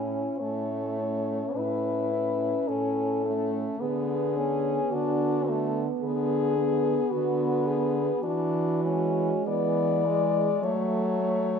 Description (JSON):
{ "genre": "classical, lyrical piece for horn quartet", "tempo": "46-55 BPM", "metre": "4/4", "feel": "rubato", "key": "A major", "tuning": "A4 = 440 Hz", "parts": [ { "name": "warm French horn", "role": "melody", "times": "0.0-11.6 s", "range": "E4 to D5", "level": "-28 LUFS", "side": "left 7 dB", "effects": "none" }, { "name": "mellow French horn", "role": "second line", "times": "0.0-11.6 s", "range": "G#3 to C#4", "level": "-33 LUFS", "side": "right 8 dB", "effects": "none" }, { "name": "clear French horn", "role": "accompaniment", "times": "0.0-11.6 s", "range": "G#3 to E4", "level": "-30 LUFS", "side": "equal", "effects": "none" }, { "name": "clear French horn", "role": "bass", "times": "0.0-11.6 s", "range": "A2 to F#3", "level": "-31 LUFS", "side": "right 3 dB", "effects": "none" } ], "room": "moderate scoring stage reverb, RT60 2.0 s", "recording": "none", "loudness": "-24 LUFS", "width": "side -6 dB against mid", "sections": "0.0-11.6 A section", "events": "none", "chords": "0.0 A; 3.8 Bm/D; 8.2 E9; 10.6 F#m" }